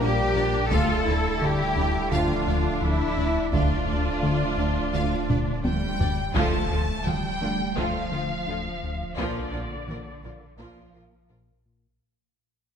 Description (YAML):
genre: cinematic, hybrid orchestral and electronic film score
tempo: 85 BPM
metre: 4/4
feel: straight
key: D minor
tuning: A4 = 439 Hz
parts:
  - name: warm studio violin section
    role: melody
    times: 0.0-11.3 s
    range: A4 to A5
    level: -34 LUFS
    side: left 3 dB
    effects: low-pass filter
  - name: rich symphonic violin section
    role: second line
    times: 0.0-11.4 s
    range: F4 to A5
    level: -36 LUFS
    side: left 1 dB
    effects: none
  - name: clear symphonic viola section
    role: accompaniment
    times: 0.0-11.4 s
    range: F3 to F4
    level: -32 LUFS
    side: equal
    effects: low-pass filter
  - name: mellow French horn section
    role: sustained chords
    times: 0.0-10.8 s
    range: D3 to F4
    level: -34 LUFS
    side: left 4 dB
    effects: low-pass filter
  - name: warm trombone section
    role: sustained chords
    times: 0.0-10.8 s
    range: D3 to Bb3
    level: -35 LUFS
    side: right 5 dB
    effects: low-pass filter
  - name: soft round pluck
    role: arpeggios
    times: 0.0-11.5 s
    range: D3 to Bb4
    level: -35 LUFS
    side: right 5 dB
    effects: chorus, low-pass filter, tape echo
  - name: smooth synth bass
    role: riff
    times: 0.0-11.9 s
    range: D2 to Bb3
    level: -28 LUFS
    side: left 2 dB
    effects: low-pass filter
  - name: pure sine sub bass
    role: bass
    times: 0.0-12.0 s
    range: D1 to Bb1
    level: -36 LUFS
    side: equal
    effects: none
  - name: rich symphonic cello section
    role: bass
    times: 0.0-11.3 s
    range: D3 to A4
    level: -30 LUFS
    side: right 1 dB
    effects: none
  - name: rich symphonic double bass section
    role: bass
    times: 0.0-11.4 s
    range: Bb1 to D2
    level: -34 LUFS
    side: right 4 dB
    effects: none
  - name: solo taiko drums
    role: drums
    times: 0.7-11.3 s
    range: none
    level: -30 LUFS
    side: equal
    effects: none
  - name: impact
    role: sound effects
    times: 6.4-9.2 s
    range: none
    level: -36 LUFS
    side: equal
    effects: none
room: wet concert hall reverb, RT60 2.2 s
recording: none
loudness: -22 LUFS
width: side -7 dB against mid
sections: 0.0-6.4 A section; 6.4-12.0 B section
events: drum fill 5.3-6.4; fade-out 6.4-12.0; impact 6.4-9.2; filter sweep 6.4-12.0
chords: 0.0 Bb; 0.7 Dm; 9.2 Bb